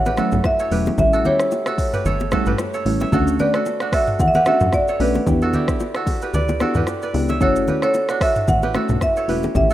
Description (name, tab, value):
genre	afrobeats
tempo	112 BPM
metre	4/4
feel	swing 55% on 16ths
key	unclear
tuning	A4 = 437 Hz
part	marimba with medium mallets	melody	0.0-9.7 s	B4 to F#5	-20 LUFS	right 1 dB	tape echo
part	glass harmonica	sustained chords	0.0-9.7 s	A3 to F#5	-32 LUFS	equal	sidechain pumping
part	kora	riff	0.0-9.7 s	D4 to E5	-26 LUFS	right 3 dB	tape echo
part	plucky analog bass	bass	0.0-9.7 s	E1 to F#2	-22 LUFS	equal	none
part	afro-pop drum kit	drums	0.1-9.7 s	hi-hat, kick drum, rim click, shaker, toms	-24 LUFS	equal	none
part	bongos and congas	percussion	0.1-9.7 s	none	-27 LUFS	left 1 dB	none
part	mellow FM electric piano	accompaniment	0.2-9.7 s	F#3 to G4	-23 LUFS	equal	chorus, phaser
room	light reverb, studio reverb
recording	rough home demo mix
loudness	-16 LUFS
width	side -13 dB against mid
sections	0.0-9.7 A section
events	kick muted 6.3-7.4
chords	0.0 F#m7; 1.0 A7; 3.1 Dmaj7; 5.3 Em7; 7.4 F#m7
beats	0.44 | 0.98 1.52 2.05 2.59 | 3.12 3.66 4.19 4.73 | 5.27 5.80 6.34 6.87 | 7.41 7.94 8.48 9.02 | 9.55